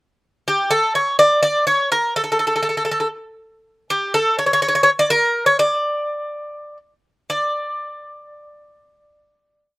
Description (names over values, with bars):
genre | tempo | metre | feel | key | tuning
greek folk | 246 BPM (eighths) | 7/8 | straight | unclear | A4 = 444 Hz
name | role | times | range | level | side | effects
Greek bouzouki | solo | 0.5-9.8 s | G4 to D5 | -16 LUFS | equal | none
room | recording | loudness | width
little or no reverb | recorded outdoors, with no room sound | -16 LUFS | side -20 dB against mid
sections
0.5-7.3 A section; 7.3-9.8 final note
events
none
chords
none